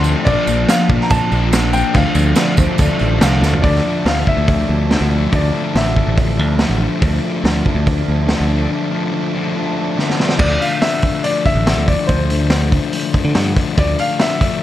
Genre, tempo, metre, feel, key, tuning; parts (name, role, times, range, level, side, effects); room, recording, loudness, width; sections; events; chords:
indie rock; 142 BPM; 4/4; straight; D minor; A4 = 440 Hz
clear upright piano; melody; 0.0-6.8, 10.4-14.6 s; C5 to C6; -21 LUFS; left 2 dB; analog delay
sludgy distorted guitar; riff; 0.0-14.6 s; Bb2 to D4; -20 LUFS; left 8 dB; overdrive
thick fuzz guitar; riff; 0.0-10.4 s; F3 to A4; -22 LUFS; right 7 dB; distortion, wide subtle chorus, analog delay
modern bright picked electric bass; bass; 0.0-13.9 s; A1 to D3; -17 LUFS; right 1 dB
tambourine; percussion; 0.0-3.5 s; -30 LUFS; right 8 dB
vintage drum kit; drums; 0.3-14.5 s; crash cymbal, hi-hat, kick drum, snare drum, toms; -17 LUFS; right 1 dB
mellow tine electric piano; second line; 2.4-3.6 s; C5 to F5; -26 LUFS; moving between right 1 dB and right 8 dB; auto-pan
light reverb; dark, warm production; -13 LUFS; side -13 dB against mid
0.0-3.6 A section; 3.6-10.4 B section; 10.4-14.6 C section
drum fill 3.4, 10.0-10.4; break 8.7-10.4
0.3 Bbadd9; 1.9 Dm; 10.4 Dm7